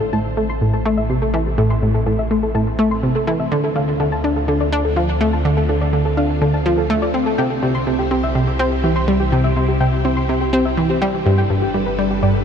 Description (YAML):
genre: ambient, sequencer-driven space music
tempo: 124 BPM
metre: 4/4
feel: straight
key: A minor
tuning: A4 = 439 Hz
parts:
  - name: phased string machine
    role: sustained chords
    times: 0.0-12.4 s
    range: C3 to B4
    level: -26 LUFS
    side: equal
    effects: ensemble chorus, phaser
  - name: soft round pluck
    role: arpeggios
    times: 0.0-12.3 s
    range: G4 to C6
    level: -23 LUFS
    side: left 2 dB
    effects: chorus, auto-pan, cassette tape, tape echo
  - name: analog pluck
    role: riff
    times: 0.0-12.3 s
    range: G2 to D4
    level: -18 LUFS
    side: equal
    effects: chorus, tape echo
  - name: warm sub bass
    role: bass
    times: 0.0-12.4 s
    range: G1 to D2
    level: -24 LUFS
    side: equal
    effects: none
room: moderate huge ambient reverb, RT60 7.7 s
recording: dark, warm production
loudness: -15 LUFS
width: side -7 dB against mid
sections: 0.0-12.4 A section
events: fade-in on string machine 0.0-12.4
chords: 0.0 Am; 3.5 Dm7; 7.4 C; 11.3 Gadd9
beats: 0.13 0.61 1.10 | 1.58 2.06 2.55 3.03 | 3.52 4.00 4.48 4.97 | 5.45 5.93 6.42 6.90 | 7.39 7.87 8.36 8.84 | 9.32 9.81 10.29 10.77 | 11.26 11.74 12.23